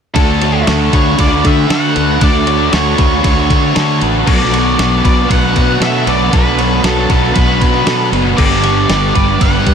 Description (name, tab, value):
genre	rock, shoegaze and dream pop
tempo	117 BPM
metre	4/4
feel	straight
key	D major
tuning	A4 = 440 Hz
part	octave-fuzz lead guitar	melody	0.1-9.7 s	A4 to F#5	-18 LUFS	left 1 dB	distortion, diffuse ambient delay
part	overdriven electric guitar	riff	0.1-9.7 s	G2 to G4	-16 LUFS	right 11 dB	reverse reverb
part	twelve-string electric guitar	arpeggios	0.2-9.7 s	A4 to C#6	-22 LUFS	left 8 dB	wide subtle chorus, diffuse ambient delay
part	thick fuzz guitar	riff	0.2-9.7 s	G2 to D4	-18 LUFS	left 10 dB	distortion, lush chorus
part	fingered electric bass	bass	0.2-9.7 s	F#1 to D3	-16 LUFS	equal	none
part	clean 12-bit digital drum machine	drums	0.2-9.7 s	crash cymbal, kick drum, ride cymbal, snare drum	-15 LUFS	equal	none
room	light reverb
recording	none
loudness	-10 LUFS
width	side -7 dB against mid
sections	0.2-9.7 A section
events	none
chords	0.2 Dmaj7; 4.3 Bm7; 8.4 Gadd9